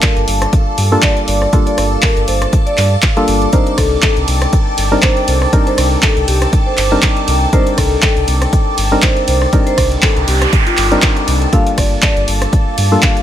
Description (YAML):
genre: deep house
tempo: 120 BPM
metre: 4/4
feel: swing 56% on 16ths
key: unclear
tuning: A4 = 438 Hz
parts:
  - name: vibraphone with medium mallets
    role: melody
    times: 0.0-13.2 s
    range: F4 to F5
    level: -20 LUFS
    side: equal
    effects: tape echo
  - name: dark analog pad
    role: sustained chords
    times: 0.0-13.2 s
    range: F5 to D6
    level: -22 LUFS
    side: equal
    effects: chorus, phaser, sidechain pumping
  - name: percussive organ stab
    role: stabs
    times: 0.0-13.2 s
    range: G3 to Bb4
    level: -18 LUFS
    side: left 1 dB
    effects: chorus, cassette tape, sidechain pumping, tape echo
  - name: electronic kick drum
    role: drums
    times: 0.0-13.1 s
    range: none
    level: -14 LUFS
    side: equal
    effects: none
  - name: punchy analog drum machine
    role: drums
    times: 0.0-13.2 s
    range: handclaps, hi-hat, ride cymbal, rim click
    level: -18 LUFS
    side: equal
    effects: none
  - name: string machine, violins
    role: texture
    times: 0.0-13.2 s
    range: A4 to A5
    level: -26 LUFS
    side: left 1 dB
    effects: ensemble chorus, sidechain pumping
  - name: sub bass with octave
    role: bass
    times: 0.2-13.0 s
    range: G1 to G2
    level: -16 LUFS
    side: equal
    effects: sidechain pumping
  - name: noise sweep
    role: sound effects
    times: 9.9-11.5 s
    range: none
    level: -20 LUFS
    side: right 5 dB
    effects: none
room: light reverb, digital ambience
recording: none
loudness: -10 LUFS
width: side -11 dB against mid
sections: 0.0-13.2 A section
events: noise sweep 9.9-11.5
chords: 0.0 Gm9; 3.5 Cm9; 11.5 Gm9